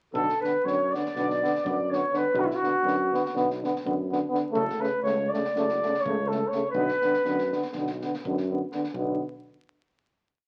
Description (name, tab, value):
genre	balkan folk, Balkan brass band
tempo	246 BPM (eighths)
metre	9/8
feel	straight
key	B minor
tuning	A4 = 442 Hz
part	warm clarinet	second line	0.1-7.7 s	E4 to D5	-35 LUFS	equal	none
part	mellow French horn	accompaniment	0.1-9.2 s	A3 to B3	-34 LUFS	equal	none
part	warm trombone	accompaniment	0.1-9.2 s	C#3 to D3	-34 LUFS	equal	none
part	mellow tuba	bass	0.1-9.2 s	F#1 to F#2	-35 LUFS	equal	none
part	mellow flugelhorn	melody	0.2-7.7 s	E4 to D5	-29 LUFS	equal	none
part	compact cocktail drum kit	percussion	0.2-9.2 s	kick drum, snare drum	-45 LUFS	equal	none
room	wet club reverb, RT60 0.7 s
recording	very old 78 rpm record, vinyl crackle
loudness	-27 LUFS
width	mono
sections	0.2-8.9 A section; 8.9-10.5 final chord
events	none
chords	0.2 Bm; 4.5 F#m; 6.7 Bm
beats	| 0.15 0.40 0.64 0.89 1.13 1.37 1.62 1.86 2.11 | 2.35 2.59 2.84 3.08 3.33 3.57 3.81 4.06 4.30 | 4.54 4.79 5.03 5.28 5.52 5.76 6.01 6.25 6.50 | 6.74 6.99 7.23 7.47 7.72 7.97 8.21 8.46 8.70 | 8.95 9.19